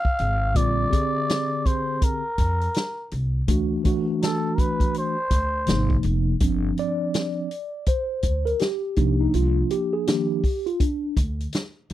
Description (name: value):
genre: hip hop, jazz-hop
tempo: 82 BPM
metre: 4/4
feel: swing 61% on 16ths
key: unclear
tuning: A4 = 440 Hz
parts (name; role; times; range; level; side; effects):
- trumpet with cup mute; melody; 0.0-6.0 s; A4 to F5; -26 LUFS; equal; none
- vintage drum kit; drums; 0.0-11.9 s; hi-hat, kick drum, snare drum; -23 LUFS; equal; none
- upright bass; bass; 0.2-11.9 s; F1 to F2; -24 LUFS; equal; none
- mellow tine electric piano; accompaniment; 0.5-11.1 s; C3 to D5; -24 LUFS; equal; medium stereo tremolo
room: little or no reverb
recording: dry, close 1970s-style studio recording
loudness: -21 LUFS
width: side -13 dB against mid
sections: 0.0-6.4 A section; 6.4-11.9 B section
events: tine electric piano solo 6.4-11.9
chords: 0.0 N.C.; 0.6 Bb9; 3.5 D9; 5.7 Abadd9; 6.4 G7sus4; 9.0 Cm11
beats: | 0.56 1.29 2.02 2.75 | 3.49 4.22 4.95 5.68 | 6.41 7.14 7.88 8.61 | 9.34 10.07 10.80 11.54